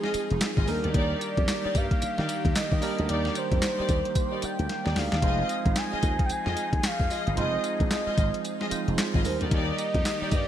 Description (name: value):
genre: R&B, new jack swing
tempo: 112 BPM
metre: 4/4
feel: swing 61% on 16ths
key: unclear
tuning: A4 = 437 Hz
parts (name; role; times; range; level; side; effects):
- mellow horn-like synth lead; melody; 0.0-10.5 s; Ab4 to Ab5; -31 LUFS; right 1 dB; chorus, ping-pong delay
- barky tine electric piano; accompaniment; 0.0-10.5 s; G3 to C5; -34 LUFS; right 6 dB; wide subtle chorus
- phased analog pad; sustained chords; 0.0-10.5 s; Eb3 to Ab4; -36 LUFS; equal; phaser, chorus
- dark studio string section; stabs; 0.0-10.3 s; Eb4 to Eb5; -35 LUFS; left 2 dB; none
- crisp 8-bit digital drum machine; drums; 0.0-10.5 s; handclaps, hi-hat, kick drum, snare drum, tambourine; -28 LUFS; equal; overdrive, gated reverb
- slap bass with an envelope filter; bass; 0.1-10.4 s; F1 to Eb3; -29 LUFS; equal; none
room: light reverb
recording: bright 1980s-style digital production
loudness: -24 LUFS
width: side -10 dB against mid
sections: 0.0-10.5 A section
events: drum fill 4.7-5.2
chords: 0.0 Fm7; 0.7 Ebmaj7; 5.2 Fm7; 9.2 Ebmaj7